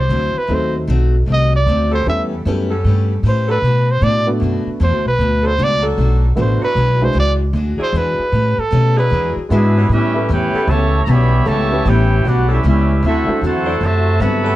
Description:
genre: jazz, big band swing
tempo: 153 BPM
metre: 4/4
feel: swing 64% on 8ths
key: A major from 9.9 s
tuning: A4 = 440 Hz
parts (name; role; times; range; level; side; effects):
- clear trumpet; melody; 0.0-9.3 s; A4 to E5; -18 LUFS; right 1 dB; plate reverb
- warm upright piano; accompaniment; 0.0-13.4 s; F#3 to C5; -23 LUFS; right 1 dB; plate reverb
- upright bass; bass; 0.0-14.6 s; A1 to B2; -15 LUFS; equal; none
- picked steel-string acoustic guitar; accompaniment; 0.1-14.5 s; A2 to B4; -25 LUFS; left 6 dB; plate reverb
- mellow saxophone section; sustained chords; 1.9-14.5 s; F#3 to C5; -25 LUFS; left 1 dB; none
- clear trumpet section; melody; 9.5-14.6 s; C4 to B5; -20 LUFS; right 1 dB; none
- bright trombone section; second line; 9.5-14.6 s; C3 to G4; -21 LUFS; right 3 dB; plate reverb
room: light reverb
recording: cassette tape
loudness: -13 LUFS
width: side -15 dB against mid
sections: 0.0-9.9 A section; 9.9-14.6 B section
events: trumpet solo 0.0-9.9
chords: 0.5 D#dim7; 2.1 A9; 3.6 Bm7; 6.8 E9; 8.3 A9; 9.1 E9; 9.9 A9; 13.0 D9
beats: 0.11 | 0.50 0.89 1.28 1.68 | 2.07 2.46 2.85 3.24 | 3.63 4.03 4.42 4.81 | 5.20 5.59 5.98 6.38 | 6.77 7.16 7.55 7.94 | 8.33 8.72 9.12 9.51 | 9.90 10.29 10.68 11.07 | 11.46 11.86 12.25 12.64 | 13.03 13.42 13.81 14.21

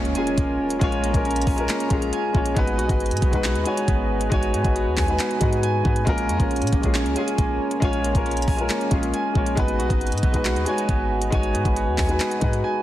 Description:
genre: hip hop, trap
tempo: 137 BPM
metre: 4/4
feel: half-time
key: Bb phrygian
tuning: A4 = 442 Hz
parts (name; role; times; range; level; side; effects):
- dark grand piano; accompaniment; 0.0-12.8 s; Ab3 to Db5; -25 LUFS; left 3 dB; low-pass filter
- hollow soft pad; sustained chords; 0.0-12.8 s; F4 to Bb5; -32 LUFS; right 1 dB; chorus
- concert harp; arpeggios; 0.0-12.8 s; Bb3 to Ab5; -26 LUFS; right 3 dB; low-pass filter, tape echo
- clean 808-style bass; bass; 0.0-12.6 s; Ab1 to Bb2; -25 LUFS; equal; none
- impact; sound effects; 0.0-0.8 s; none; -41 LUFS; equal; none
- trap drum kit; drums; 0.1-12.6 s; handclaps, hi-hat, kick drum; -24 LUFS; equal; none
room: light reverb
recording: dense, heavily limited modern master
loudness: -19 LUFS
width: side -13 dB against mid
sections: 0.0-12.8 A section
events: impact 0.0-0.8; break 12.6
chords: 0.0 Bbm7; 2.6 Abm7; 6.1 Bbm7; 9.6 Abm7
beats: 0.38 | 0.81 1.25 1.69 2.13 | 2.56 3.00 3.44 3.88 | 4.32 4.75 5.19 5.63 | 6.07 6.51 6.95 7.38 | 7.82 8.26 8.70 9.13 | 9.57 10.01 10.45 10.89 | 11.32 11.76 12.20 12.64

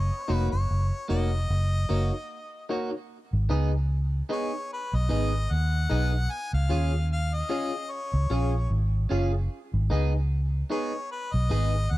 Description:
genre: reggae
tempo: 75 BPM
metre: 4/4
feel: swing 57% on 16ths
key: unclear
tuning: A4 = 439 Hz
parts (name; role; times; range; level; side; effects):
- bright harmonica; melody; 0.0-12.0 s; Cb5 to Ab5; -34 LUFS; left 2 dB; tape echo
- vintage muted fingered electric bass; bass; 0.0-12.0 s; F1 to Eb2; -24 LUFS; equal; none
- clean electric guitar; accompaniment; 0.3-11.7 s; Bb3 to Ab4; -35 LUFS; right 3 dB; lush chorus, tape echo
- barky reed electric piano; stabs; 0.3-11.8 s; Eb4 to F5; -32 LUFS; left 3 dB; overdrive, fast tremolo
room: little or no reverb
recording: dry, close 1970s-style studio recording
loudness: -24 LUFS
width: side -17 dB against mid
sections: 0.0-3.1 A section; 3.1-12.0 B section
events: none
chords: 0.0 Gb6; 3.1 Abm; 6.3 Db; 9.5 Abm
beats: 0.69 1.49 2.29 | 3.10 3.90 4.70 5.50 | 6.30 7.10 7.90 8.71 | 9.51 10.31 11.11 11.91

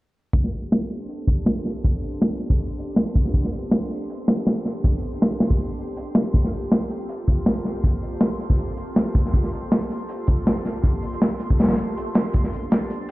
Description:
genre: drum and bass, jungle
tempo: 160 BPM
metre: 4/4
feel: swing 53% on 16ths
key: A minor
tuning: A4 = 440 Hz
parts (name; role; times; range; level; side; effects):
- airy breathy pad; sustained chords; 0.3-13.1 s; Bb3 to A4; -30 LUFS; equal; chorus
- crunchy breakbeat drum kit; drums; 0.3-13.1 s; hi-hat, kick drum, snare drum; -20 LUFS; equal; low-pass filter on kick, low-pass filter on hats, low-pass filter on snare, low-pass filter on room
- twinkling granular texture; texture; 1.5-13.1 s; A5 to C6; -42 LUFS; right 2 dB; built-in reverb
- swell; sound effects; 11.8-12.3 s; none; -32 LUFS; equal; none
room: light reverb, small room ambience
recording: played on a big sound system in a bare room, stone room reverb, low-pass filter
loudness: -20 LUFS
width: side -19 dB against mid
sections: 0.3-13.1 A section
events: filter sweep on drum 0.3-13.1; filter sweep 0.3-13.1; swell 11.8-12.3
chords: 0.3 Am11; 6.3 Gm11; 12.3 Am11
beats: | 0.34 0.71 1.09 1.47 | 1.84 2.21 2.59 2.96 | 3.34 3.71 4.09 4.46 | 4.84 5.21 5.59 5.96 | 6.34 6.71 7.09 7.46 | 7.84 8.21 8.59 8.96 | 9.34 9.71 10.09 10.46 | 10.84 11.21 11.59 11.96 | 12.34 12.71 13.09

